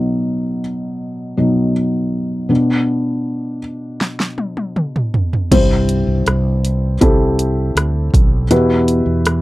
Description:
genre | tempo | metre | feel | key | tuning
pop ballad | 80 BPM | 4/4 | straight | unclear | A4 = 439 Hz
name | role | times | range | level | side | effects
felt-muted upright piano | accompaniment | 0.0-9.4 s | G2 to C5 | -17 LUFS | left 1 dB | none
deep house drum kit | drums | 4.0-9.4 s | crash cymbal, hi-hat, kick drum, rim click, snare drum, toms | -16 LUFS | equal | none
fretless electric bass | bass | 5.5-9.4 s | B1 to E2 | -17 LUFS | equal | none
room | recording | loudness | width
light reverb | dry, close 1970s-style studio recording | -14 LUFS | side -18 dB against mid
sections
0.0-5.5 A section; 5.5-9.4 B section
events
felt piano solo 0.0-5.5; drum fill 4.0-5.5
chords
0.0 B; 2.5 Bm; 5.5 C; 8.5 Emadd9

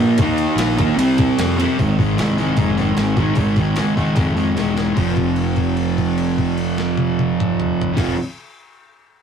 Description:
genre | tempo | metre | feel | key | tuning
garage rock duo or trio | 149 BPM | 4/4 | straight | F minor | A4 = 440 Hz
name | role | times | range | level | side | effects
fuzz guitar | riff | 0.0-8.2 s | F2 to Eb4 | -18 LUFS | right 1 dB | distortion
fuzz fingered electric bass | bass | 0.0-8.1 s | E1 to F2 | -22 LUFS | left 1 dB | overdrive
boom bap sampler-style drum kit | drums | 0.2-8.1 s | crash cymbal, hi-hat, kick drum, ride cymbal, snare drum, toms | -23 LUFS | equal | overdrive
room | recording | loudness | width
wet booth ambience, RT60 0.2 s | rough rehearsal-room recording | -16 LUFS | side -7 dB against mid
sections
0.0-1.8 A section; 1.8-5.0 B section; 5.0-8.2 C section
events
drum fill 4.2-5.0; held note 5.0-8.0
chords
0.2 Eb5; 1.0 C5; 1.8 Ab5; 5.0 F5

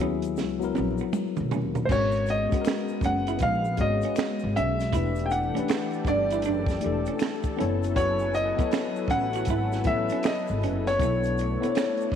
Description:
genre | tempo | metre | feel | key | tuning
R&B, neo-soul | 79 BPM | 4/4 | swing 63% on 16ths | unclear | A4 = 440 Hz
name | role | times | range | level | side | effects
warm concert grand piano | melody | 0.0-12.2 s | B#4 to G5 | -28 LUFS | left 1 dB | none
semi-hollow electric guitar | second line | 0.0-11.8 s | B3 to F#4 | -34 LUFS | right 13 dB | none
tine electric piano | accompaniment | 0.0-12.2 s | F#3 to C#5 | -30 LUFS | left 9 dB | overdrive, medium stereo tremolo
upright bass | bass | 0.0-12.2 s | E1 to D#2 | -30 LUFS | equal | none
compact cocktail drum kit | drums | 0.2-12.2 s | crash cymbal, finger snaps, hi-hat, kick drum, snare drum, toms | -29 LUFS | right 3 dB | none
tube shaker and finger snaps | percussion | 0.2-12.1 s | none | -47 LUFS | left 10 dB | none
lush unison pad | sustained chords | 1.9-12.2 s | E3 to G#5 | -34 LUFS | equal | chorus
room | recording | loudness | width
light reverb, small room ambience | 1960s-style stereo with parts hard left and right, vinyl crackle | -23 LUFS | side -8 dB against mid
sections
0.0-1.9 A section; 1.9-12.2 B section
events
drum fill 0.4-1.9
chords
0.0 C#m9; 1.9 G#m11; 4.9 Em11; 7.6 F#m11; 11.0 Bm11

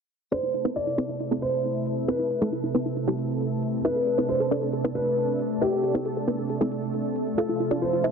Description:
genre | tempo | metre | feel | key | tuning
uplifting trance | 136 BPM | 4/4 | straight | A minor | A4 = 436 Hz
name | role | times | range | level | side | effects
wide unison pluck | melody | 0.3-8.1 s | G3 to F5 | -28 LUFS | equal | tape echo
felt-muted upright piano | second line | 0.3-8.1 s | G4 to D5 | -28 LUFS | equal | ping-pong delay
analog string pad | sustained chords | 0.3-8.1 s | C3 to A4 | -28 LUFS | right 2 dB | ensemble chorus
electronic hi-hat | drums | 0.3-8.1 s | none | -61 LUFS | left 4 dB | none
room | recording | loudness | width
moderate lush hall reverb, RT60 1.8 s, digital ambience | dense, heavily limited modern master, low-pass filter | -24 LUFS | side -6 dB against mid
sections
0.3-8.1 A section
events
filter sweep on synth pluck 0.3-8.1; filter sweep 0.3-8.1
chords
0.3 Amadd9; 7.4 F

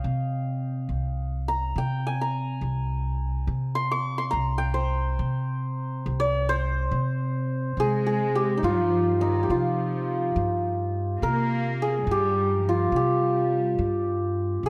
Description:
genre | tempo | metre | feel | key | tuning
Persian modal ensemble | 70 BPM (dotted quarters) | 6/8 | straight | C dastgah shur | A4 = 440 Hz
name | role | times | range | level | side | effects
santur | melody | 0.0-14.7 s | Eb4 to Db6+45c | -28 LUFS | equal | none
upright bass | bass | 0.0-14.7 s | C2 to C3 | -30 LUFS | equal | none
rich studio cello section | second line | 7.8-14.7 s | Eb3 to Bb3 | -34 LUFS | equal | none
room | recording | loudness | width
light reverb | none | -26 LUFS | mono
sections
0.0-7.8 A section; 7.8-14.7 B section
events
none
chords
none

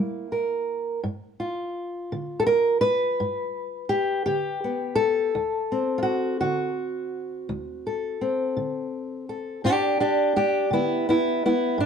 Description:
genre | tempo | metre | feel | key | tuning
acoustic country blues, solo or duo | 56 BPM (dotted quarters) | 12/8 | straight | G mixolydian | A4 = 440 Hz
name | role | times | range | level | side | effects
fingerpicked old ladder-braced acoustic guitar | solo | 0.0-11.9 s | D2 to B4 | -23 LUFS | equal | none
room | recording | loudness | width
light reverb | dark, warm production | -23 LUFS | side -6 dB against mid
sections
0.0-9.6 A section; 9.6-11.9 B section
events
steel-string acoustic guitar solo 9.6-11.9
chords
0.0 C7 (rootless); 1.0 G7; 5.3 D7; 9.6 G

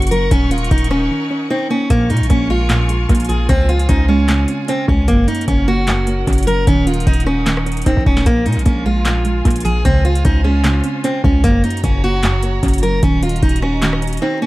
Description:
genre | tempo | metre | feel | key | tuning
hip hop, trap | 151 BPM | 4/4 | half-time | Bb minor | A4 = 444 Hz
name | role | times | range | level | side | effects
fingerpicked steel-string acoustic guitar | melody | 0.0-14.5 s | Bb3 to Bb4 | -19 LUFS | equal | analog delay
soft round pluck | accompaniment | 0.0-14.5 s | Gb2 to C5 | -20 LUFS | right 2 dB | chorus
clear symphonic string section | sustained chords | 0.0-14.5 s | Db3 to Db6 | -28 LUFS | right 1 dB | none
hard-hitting 808-style bass | bass | 0.0-14.2 s | Db1 to Bb2 | -17 LUFS | equal | none
booming analog drum machine | drums | 0.0-14.2 s | handclaps, hi-hat, kick drum, rim click, snare drum | -17 LUFS | equal | none
room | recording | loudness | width
little or no reverb | echo-heavy mix, vinyl crackle | -13 LUFS | side -18 dB against mid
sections
0.0-1.9 A section; 1.9-14.5 A section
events
break 1.1-1.9; drum fill 7.9-8.3; drums muted 14.2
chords
0.3 Ebm7; 1.9 Bbm7; 3.5 Dbmaj7; 5.1 Gb; 6.7 Ebm7; 8.3 Bb5; 9.8 Dbmaj7; 11.4 Gb; 13.0 Ebm7

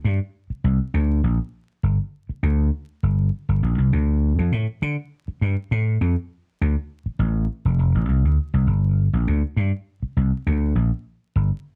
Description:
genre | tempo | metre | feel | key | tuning
funk | 101 BPM | 4/4 | straight | G minor | A4 = 439 Hz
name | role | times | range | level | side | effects
vintage slap bass | solo | 0.0-11.5 s | F1 to D3 | -21 LUFS | equal | none
room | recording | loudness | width
moderate small room reverb, RT60 0.5 s | dark, warm production, vinyl crackle | -22 LUFS | mono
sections
0.0-8.7 A section; 8.7-11.8 A section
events
none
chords
none

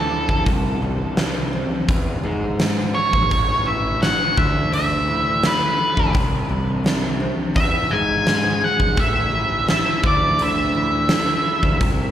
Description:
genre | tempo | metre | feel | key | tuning
quiet-loud alternative rock | 85 BPM | 4/4 | straight | unclear | A4 = 439 Hz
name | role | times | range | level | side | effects
octave-fuzz lead guitar | melody | 0.0-11.8 s | A4 to G#5 | -21 LUFS | equal | distortion, slapback echo, tape echo
fingerpicked steel-string acoustic guitar | arpeggios | 0.0-12.1 s | E2 to G#4 | -28 LUFS | equal | slapback echo
fuzz picked electric bass | bass | 0.0-12.1 s | A1 to G#2 | -24 LUFS | equal | overdrive
huge arena drum kit | drums | 0.3-12.0 s | hi-hat, kick drum, snare drum | -22 LUFS | equal | none
room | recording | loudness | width
light reverb | live gig heard through the venue's PA, recital hall reverb | -17 LUFS | side -10 dB against mid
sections
0.0-12.1 A section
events
none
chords
0.5 Csus2; 1.9 E; 3.3 A; 4.4 Dsus2; 6.1 Csus2; 7.6 E; 9.0 A; 10.0 Dsus2

